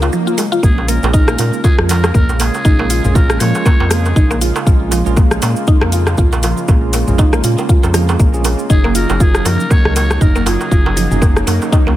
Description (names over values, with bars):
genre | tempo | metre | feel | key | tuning
afro house | 119 BPM | 4/4 | swing 57% on 16ths | Bb minor | A4 = 439 Hz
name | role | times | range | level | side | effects
warm analog pad | sustained chords | 0.0-12.0 s | Db3 to F4 | -25 LUFS | equal | chorus, tremolo, sidechain pumping
mallet-like synth pluck | arpeggios | 0.0-12.0 s | F3 to F4 | -20 LUFS | equal | chorus, vintage 12-bit sampler grit, sidechain pumping, digital delay
round analog bass | bass | 0.0-12.0 s | Gb1 to Bb2 | -16 LUFS | equal | sidechain pumping
house drum kit | drums | 0.0-11.8 s | hi-hat, rim click, shaker, toms | -20 LUFS | equal | none
darbuka | percussion | 0.0-12.0 s | none | -24 LUFS | right 4 dB | none
swell | sound effects | 0.0-0.6 s | none | -23 LUFS | right 2 dB | none
trumpet with metal mute | melody | 0.6-4.4, 8.7-11.4 s | Ab4 to Db5 | -23 LUFS | equal | digital delay
bell-like tine electric piano | stabs | 0.6-12.0 s | Gb3 to Bb4 | -22 LUFS | right 4 dB | fast stereo tremolo, sidechain pumping, digital delay
electronic kick drum | drums | 0.6-11.8 s | none | -11 LUFS | equal | none
room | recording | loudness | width
digital ambience | none | -11 LUFS | side -14 dB against mid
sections
0.0-12.0 A section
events
swell 0.0-0.6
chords
0.0 Gb6; 0.6 Bbm7; 8.7 Gb6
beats
0.13 | 0.63 1.14 1.64 2.15 | 2.65 3.15 3.66 4.16 | 4.67 5.17 5.67 6.18 | 6.68 7.19 7.69 8.20 | 8.70 9.21 9.71 10.21 | 10.72 11.22 11.73